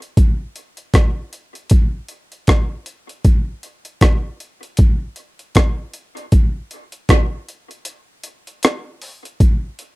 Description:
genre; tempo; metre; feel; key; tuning
reggae; 78 BPM; 4/4; swing 58% on 16ths; none; none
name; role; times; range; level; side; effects
breakbeat sampler-style drum kit; drums; 0.0-10.0 s; hi-hat, kick drum, rim click; -14 LUFS; equal; overdrive
room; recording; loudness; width
light reverb; dry, close 1970s-style studio recording; -15 LUFS; side -22 dB against mid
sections
0.0-9.4 A section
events
break 7.9-9.4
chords
none

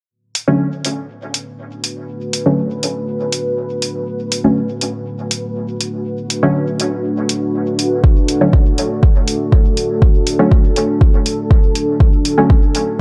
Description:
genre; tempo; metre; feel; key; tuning
dub techno; 121 BPM; 4/4; straight; B minor; A4 = 439 Hz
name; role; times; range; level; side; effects
deep dark ambient pad; sustained chords; 1.3-13.0 s; A3 to B4; -22 LUFS; equal; chorus, built-in reverb, sidechain pumping
electronic hi-hat; drums; 0.3-12.8 s; none; -22 LUFS; equal; overdrive
filtered dub chord stab; stabs; 0.5-12.6 s; D3 to C#4; -19 LUFS; equal; chorus, phaser, sidechain pumping, dub echo
electronic kick drum; drums; 8.0-12.6 s; none; -13 LUFS; equal; overdrive
room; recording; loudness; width
light reverb; dry, gritty hardware recording, transformer saturation, cassette tape; -16 LUFS; mono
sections
0.1-13.0 A section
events
none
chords
0.1 Bm7

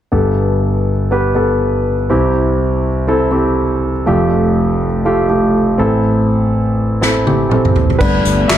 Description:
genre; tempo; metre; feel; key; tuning
piano-driven pop; 122 BPM; 4/4; swing 56% on 16ths; unclear; A4 = 437 Hz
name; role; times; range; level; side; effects
dark concert grand piano; accompaniment; 0.1-8.6 s; F1 to E5; -12 LUFS; equal; none
unplugged drum kit; drums; 7.0-8.6 s; crash cymbal, handclaps, hi-hat, kick drum, snare drum, toms; -14 LUFS; equal; none
warm studio string section; sustained chords; 8.0-8.6 s; G3 to B3; -23 LUFS; left 1 dB; stereo widening
sustaining fretless electric bass; bass; 8.0-8.6 s; G1; -17 LUFS; equal; none
room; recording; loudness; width
moderate large studio reverb, RT60 1.4 s, small room ambience; dark, warm production; -12 LUFS; side -11 dB against mid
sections
0.1-8.0 A section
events
drum fill 7.0-8.0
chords
0.1 Gadd9; 2.1 C; 4.1 Fadd9; 5.8 Am; 8.0 Gadd9

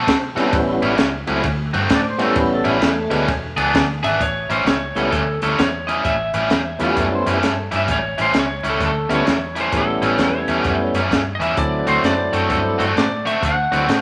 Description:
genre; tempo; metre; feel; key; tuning
electric blues shuffle; 130 BPM; 4/4; swing 64% on 8ths; A mixolydian; A4 = 440 Hz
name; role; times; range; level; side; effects
overdriven electric guitar; riff; 0.0-14.0 s; A2 to A4; -23 LUFS; equal; none
vintage muted fingered electric bass; bass; 0.0-14.0 s; E1 to C3; -29 LUFS; equal; none
compact cocktail drum kit; drums; 0.1-14.0 s; hi-hat, kick drum, ride cymbal, snare drum; -24 LUFS; equal; none
tonewheel organ; accompaniment; 0.3-13.9 s; F#3 to D5; -24 LUFS; equal; slow rotary speaker, overdrive
lightly driven lead guitar; melody; 4.0-14.0 s; A4 to F#5; -25 LUFS; equal; none
electric guitar through a small old amp; second line; 6.8-7.6 s; G4 to C5; -29 LUFS; equal; none
room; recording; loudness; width
moderate large studio reverb, RT60 1.2 s; vinyl crackle; -19 LUFS; mono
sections
0.0-4.2 A section; 4.2-14.0 B section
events
none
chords
0.0 D7; 0.5 A7; 1.4 D7; 2.4 A7; 3.3 E7; 4.2 A7; 11.6 D7

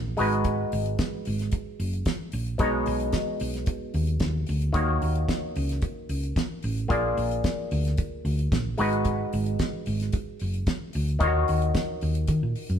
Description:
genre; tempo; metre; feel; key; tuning
disco; 112 BPM; 4/4; straight; Eb minor; A4 = 439 Hz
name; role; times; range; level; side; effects
auto-wah clav; accompaniment; 0.0-12.8 s; B2 to D5; -29 LUFS; left 1 dB; none
hollow-body short-scale fingered electric bass; bass; 0.0-12.8 s; Gb1 to Eb3; -27 LUFS; equal; none
damped 70s drum kit; drums; 0.2-12.8 s; hi-hat, kick drum, snare drum; -29 LUFS; equal; none
room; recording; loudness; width
moderate stone room reverb, RT60 1.3 s; band playing live in one room; -24 LUFS; side -8 dB against mid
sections
0.0-12.8 A section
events
none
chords
0.2 Abm7; 2.6 B69; 4.8 Ebm7; 6.9 Bb7; 8.8 Abm7; 11.2 Ebm7

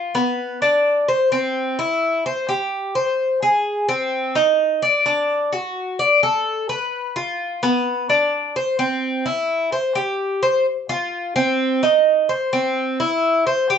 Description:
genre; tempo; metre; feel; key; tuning
latin; 128 BPM; 4/4; straight; unclear; A4 = 439 Hz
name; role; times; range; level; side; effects
Cuban tres; solo; 0.0-13.8 s; B3 to D5; -17 LUFS; equal; none
room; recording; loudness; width
wet studio reverb, RT60 0.5 s; band playing live in one room, nothing above 8.0 kHz; -17 LUFS; side -7 dB against mid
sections
0.0-10.7 A section; 10.7-13.8 A section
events
none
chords
none

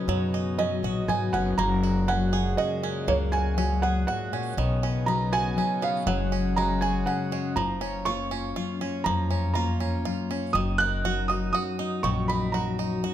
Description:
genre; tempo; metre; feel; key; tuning
acoustic folk duo or small band; 121 BPM; 3/4; straight; unclear; A4 = 440 Hz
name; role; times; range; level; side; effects
felt-muted upright piano; melody; 0.0-13.1 s; C#5 to F#6; -28 LUFS; right 3 dB; none
fingerpicked steel-string acoustic guitar; accompaniment; 0.0-13.1 s; F#2 to C#5; -29 LUFS; left 4 dB; none
pedal harmonium; sustained chords; 0.0-7.5 s; A#2 to F#4; -36 LUFS; left 1 dB; none
bluegrass banjo; arpeggios; 0.0-13.1 s; D#3 to G#4; -33 LUFS; right 8 dB; none
upright bass; bass; 0.1-13.0 s; F#1 to F#2; -28 LUFS; equal; none
room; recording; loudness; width
light reverb; close, detailed microphones; -24 LUFS; side -11 dB against mid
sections
0.0-7.6 A section; 7.6-13.1 B section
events
felt piano solo 0.0-7.6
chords
0.0 Badd9; 1.6 F#add9; 4.6 Badd9; 6.1 F#sus2; 7.6 A#m/F#; 10.5 D#m/F#

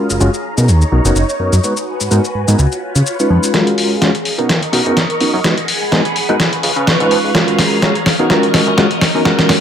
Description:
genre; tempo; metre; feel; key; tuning
filtered disco house; 126 BPM; 4/4; swing 55% on 16ths; unclear; A4 = 441 Hz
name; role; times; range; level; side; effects
reed electric piano; accompaniment; 0.0-9.6 s; G#3 to C#5; -16 LUFS; equal; overdrive, medium tremolo, phaser, low-pass filter
phased string machine; sustained chords; 0.0-9.6 s; D#4 to C#6; -20 LUFS; equal; ensemble chorus, phaser, low-pass filter
fat analog bass; bass; 0.1-9.2 s; F#1 to C#3; -15 LUFS; equal; high-pass filter, low-pass filter
dusty soul sampler-style drum kit; drums; 0.1-9.6 s; cabasa, hi-hat, snare drum; -16 LUFS; equal; none
room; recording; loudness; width
moderate plate reverb, RT60 1.2 s; none; -11 LUFS; side -8 dB against mid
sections
0.0-3.5 A section; 3.5-9.6 B section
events
filter sweep 0.0-3.5, 3.5-9.6; build-up 3.5-9.6; drum fill 3.5-9.6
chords
0.4 Bmaj9; 1.6 G#m7; 2.6 C#7; 3.5 F#maj9; 4.3 Bmaj9; 5.4 G#m7; 6.4 C#7; 7.4 F#maj9; 8.1 Bmaj9

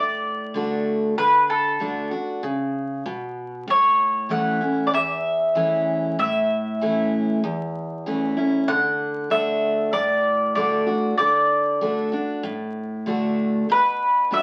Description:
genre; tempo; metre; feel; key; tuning
country; 96 BPM; 4/4; straight; D major; A4 = 437 Hz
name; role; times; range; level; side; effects
mandolin; melody; 0.0-14.4 s; A4 to F#5; -23 LUFS; equal; none
picked steel-string acoustic guitar; accompaniment; 0.0-14.4 s; E2 to F#4; -27 LUFS; equal; none
room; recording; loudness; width
wet studio reverb, RT60 0.8 s; very old 78 rpm record, vinyl crackle; -22 LUFS; mono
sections
0.0-14.4 A section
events
none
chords
0.0 D; 3.7 A; 8.7 D; 13.7 Bm

